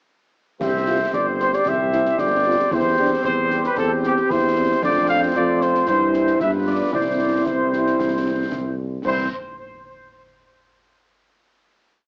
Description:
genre	military-style march for wind band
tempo	114 BPM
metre	2/4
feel	straight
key	C major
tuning	A4 = 439 Hz
part	dark trumpet section	melody	0.6-9.3 s	G4 to F5	-24 LUFS	equal	cassette tape, tape echo
part	warm euphonium	second line	0.6-8.7 s	C4 to G4	-29 LUFS	equal	cassette tape, plate reverb
part	warm woodwind section	second line	0.6-9.3 s	E4 to C5	-28 LUFS	equal	cassette tape, plate reverb
part	clear trombone section	sustained chords	0.6-9.3 s	E3 to C4	-36 LUFS	equal	none
part	warm tuba	bass	0.6-9.3 s	G1 to G2	-28 LUFS	equal	none
part	concert snare drum, clash cymbals and concert bass drum	drums	0.6-9.3 s	none	-34 LUFS	equal	cassette tape
part	dark French horn section	accompaniment	0.9-9.3 s	G3 to G4	-29 LUFS	equal	none
room	moderate studio ambience, RT60 0.5 s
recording	home recording on cassette, small speaker sound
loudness	-20 LUFS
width	mono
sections	0.6-9.1 A section; 9.1-10.1 final chord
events	none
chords	0.6 C; 2.7 C/E; 4.8 Dm7/F; 5.9 C/G; 6.4 G7; 6.9 C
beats	| 0.61 1.13 | 1.66 2.19 | 2.71 3.24 | 3.77 4.30 | 4.83 5.36 | 5.88 6.41 | 6.94 7.47 | 8.00 8.52 | 9.05

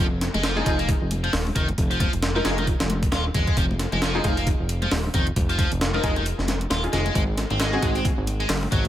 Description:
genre	breakbeat, breaks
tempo	134 BPM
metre	4/4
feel	swing 58% on 16ths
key	F phrygian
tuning	A4 = 440 Hz
part	biting overdriven guitar	riff	0.0-8.8 s	Eb3 to F4	-28 LUFS	equal	vintage 12-bit sampler grit, tape echo
part	fat analog bass	bass	0.0-8.9 s	Eb1 to Ab1	-26 LUFS	equal	none
part	breakbeat sampler-style drum kit	drums	0.2-8.8 s	hi-hat, kick drum, snare drum	-24 LUFS	equal	none
part	house drum kit	drums	0.2-8.9 s	handclaps, hi-hat	-36 LUFS	equal	none
part	congas	percussion	0.3-8.9 s	none	-34 LUFS	left 3 dB	none
part	orchestra-hit-like synth stab	stabs	0.6-8.9 s	C4 to Bb4	-29 LUFS	equal	built-in reverb, tape echo
room	digital ambience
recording	none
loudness	-20 LUFS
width	side -12 dB against mid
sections	0.0-8.9 A section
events	none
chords	0.0 Fm7; 7.2 Ab7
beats	0.44 0.89 1.33 | 1.78 2.23 2.68 3.12 | 3.57 4.02 4.47 4.92 | 5.36 5.81 6.26 6.71 | 7.15 7.60 8.05 8.50

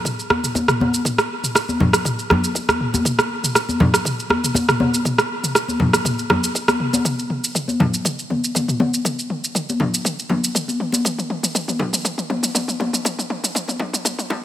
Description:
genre	house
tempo	120 BPM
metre	4/4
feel	straight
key	none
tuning	none
part	deep house drum kit	drums	0.1-14.4 s	rim click, shaker, toms	-19 LUFS	equal	studio reverb
part	electronic kick drum	drums	0.1-14.2 s	none	-28 LUFS	right 1 dB	high-pass filter on kick, studio reverb
part	congas	percussion	0.3-14.4 s	none	-22 LUFS	left 2 dB	none
room	light reverb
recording	high-pass filter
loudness	-17 LUFS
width	side -12 dB against mid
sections	0.0-14.4 A section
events	build-up 0.0-14.4; drum fill 0.0-14.4; filter sweep 0.0-14.4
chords	none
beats	0.05 0.55 | 1.05 1.55 2.05 2.55 | 3.05 3.55 4.05 4.55 | 5.05 5.55 6.05 6.55 | 7.05 7.55 8.05 8.55 | 9.05 9.55 10.05 10.55 | 11.05 11.55 12.05 12.55 | 13.05 13.55 14.05

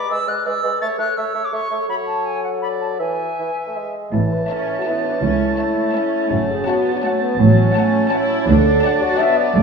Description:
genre	quick classical-period movement for symphony orchestra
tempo	166 BPM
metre	3/4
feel	straight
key	A major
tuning	A4 = 440 Hz
part	clear oboe	second line	0.0-9.6 s	C#5 to A5	-29 LUFS	right 3 dB	none
part	dark clarinet	second line	0.0-9.6 s	A4 to D5	-28 LUFS	left 1 dB	none
part	silver concert flute	second line	0.0-3.9 s	F#5 to A6	-23 LUFS	equal	none
part	mellow bassoon	accompaniment	0.1-9.6 s	E3 to A3	-24 LUFS	equal	none
part	clear French horn section	sustained chords	4.1-9.6 s	B3 to E5	-20 LUFS	left 1 dB	none
part	rich symphonic double bass section	bass	4.1-9.6 s	F#1 to D2	-20 LUFS	right 3 dB	none
part	warm studio cello section	bass	4.1-9.6 s	D2 to C#3	-19 LUFS	right 2 dB	none
part	clear studio violin section	melody	4.5-9.5 s	A5	-30 LUFS	left 4 dB	none
part	dark studio violin section	second line	4.5-9.5 s	C#5 to F#5	-30 LUFS	left 3 dB	none
part	clear studio viola section	accompaniment	4.5-9.6 s	F#3 to E4	-24 LUFS	right 3 dB	none
room	wet scoring stage reverb, RT60 1.6 s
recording	small room ambience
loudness	-16 LUFS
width	side -5 dB against mid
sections	0.0-4.1 A section; 4.1-9.6 B section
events	none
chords	0.0 E7/G#; 0.8 A; 1.9 F#m; 3.0 E; 4.1 A; 5.2 A/C#; 6.3 F#m; 7.4 F#m/A; 8.5 D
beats	0.10 0.46 | 0.81 1.17 1.53 | 1.89 2.26 2.62 | 3.00 3.38 3.75 | 4.13 4.50 4.86 | 5.22 5.59 5.95 | 6.31 6.67 7.04 | 7.39 7.76 8.12 | 8.48 8.84 9.20 | 9.55

